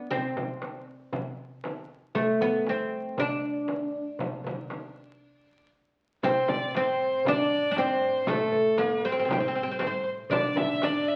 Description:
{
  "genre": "Arabic maqam ensemble",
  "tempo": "118 BPM",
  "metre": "4/4",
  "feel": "straight",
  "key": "A maqam bayati from 6.2 s",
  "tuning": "A4 = 439 Hz",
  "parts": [
    { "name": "oud", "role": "melody", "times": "0.0-11.2 s", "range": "A3 to D4", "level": "-29 LUFS", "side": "equal", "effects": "none" },
    { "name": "darbuka", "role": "percussion", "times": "0.1-11.0 s", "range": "none", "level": "-42 LUFS", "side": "equal", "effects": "none" },
    { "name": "frame drum", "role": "percussion", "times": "0.1-10.9 s", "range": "none", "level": "-36 LUFS", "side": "equal", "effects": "none" },
    { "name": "rich violin", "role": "second line", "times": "6.2-11.2 s", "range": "A4 to E5", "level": "-31 LUFS", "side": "equal", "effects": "none" },
    { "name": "rich double bass", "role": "drone", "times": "6.2-11.2 s", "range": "A2", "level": "-50 LUFS", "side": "equal", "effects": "none" }
  ],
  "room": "moderate large studio reverb, RT60 0.9 s",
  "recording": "very old 78 rpm record, vinyl crackle",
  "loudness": "-28 LUFS",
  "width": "mono",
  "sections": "0.0-6.2 A section; 6.2-11.2 B section",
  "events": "break 5.2-6.2",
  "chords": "none",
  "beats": "| 0.11 0.62 1.13 1.64 | 2.15 2.66 3.17 3.69 | 4.20 4.71 5.22 5.73 | 6.24 6.75 7.26 7.77 | 8.28 8.79 9.30 9.81 | 10.32 10.83"
}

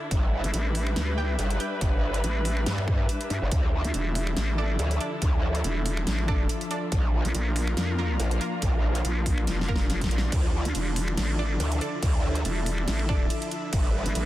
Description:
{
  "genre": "heavy wobble dubstep",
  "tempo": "141 BPM",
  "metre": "4/4",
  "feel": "swing 55% on 16ths, half-time",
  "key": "D minor",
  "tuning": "A4 = 441 Hz",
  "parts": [
    { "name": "dark chamber string section", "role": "sustained chords", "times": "0.0-14.3 s", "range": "D3 to B4", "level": "-36 LUFS", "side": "left 1 dB", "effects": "sidechain pumping" },
    { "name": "airy breathy pad", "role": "texture", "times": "0.0-14.3 s", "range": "F3 to F5", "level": "-34 LUFS", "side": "left 1 dB", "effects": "chorus, sidechain pumping" },
    { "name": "growl bass", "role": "bass", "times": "0.1-14.0 s", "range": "G1 to G2", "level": "-27 LUFS", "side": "equal", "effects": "chorus, overdrive" },
    { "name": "dubstep drum kit", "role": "drums", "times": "0.1-14.2 s", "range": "crash cymbal, finger snaps, hi-hat, snare drum", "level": "-34 LUFS", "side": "right 1 dB", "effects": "studio reverb" },
    { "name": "electronic kick drum", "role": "drums", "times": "0.1-13.8 s", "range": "none", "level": "-25 LUFS", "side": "equal", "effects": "studio reverb" },
    { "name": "vowel-sweep wobble bass", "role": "bass", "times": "0.4-14.3 s", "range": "E1 to G2", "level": "-27 LUFS", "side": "equal", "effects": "chorus, overdrive" },
    { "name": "orchestra-hit-like synth stab", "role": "stabs", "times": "1.2-1.7, 4.6-13.2 s", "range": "Bb3 to G5", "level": "-36 LUFS", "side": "right 3 dB", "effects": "built-in reverb, digital delay" }
  ],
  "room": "digital ambience",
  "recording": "dense, heavily limited modern master",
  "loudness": "-24 LUFS",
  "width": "side -15 dB against mid",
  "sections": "0.0-14.3 A section",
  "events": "drum fill 9.5-10.3",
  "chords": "0.1 G6; 3.5 Dmadd9; 6.9 Bb; 10.3 Dmadd9; 13.7 G6",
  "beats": "| 0.11 0.54 0.96 1.39 | 1.81 2.24 2.66 3.09 | 3.52 3.94 4.37 4.79 | 5.22 5.64 6.07 6.49 | 6.92 7.34 7.77 8.20 | 8.62 9.05 9.47 9.90 | 10.32 10.75 11.18 11.60 | 12.03 12.45 12.88 13.30 | 13.73 14.15"
}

